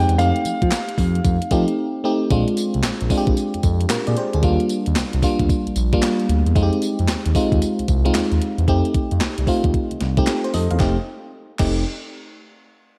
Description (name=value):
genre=R&B, new jack swing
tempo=113 BPM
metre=4/4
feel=swing 64% on 16ths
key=unclear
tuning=A4 = 444 Hz
part: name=dark concert grand piano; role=melody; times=0.0-1.7 s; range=F5 to G5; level=-27 LUFS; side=equal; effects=analog delay
part: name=FM electric piano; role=accompaniment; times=0.0-11.8 s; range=G3 to F5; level=-24 LUFS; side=equal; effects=chorus
part: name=smooth gliding synth bass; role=bass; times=0.0-11.8 s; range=F1 to F3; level=-23 LUFS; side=equal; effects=none
part: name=clean 12-bit digital drum machine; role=drums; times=0.1-11.8 s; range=crash cymbal, handclaps, hi-hat, kick drum, snare drum, tambourine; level=-25 LUFS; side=equal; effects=overdrive
part: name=group handclap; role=percussion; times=0.7-11.8 s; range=none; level=-38 LUFS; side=equal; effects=none
room=moderate lush hall reverb, RT60 1.8 s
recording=dreamy mix soaked in reverb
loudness=-20 LUFS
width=mono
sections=0.0-2.3 A section; 2.3-10.8 B section; 10.8-12.9 C section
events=break 1.8-2.3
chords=0.2 F7; 2.3 Bb9; 4.4 Ebmaj7; 6.6 Fm9; 8.7 F7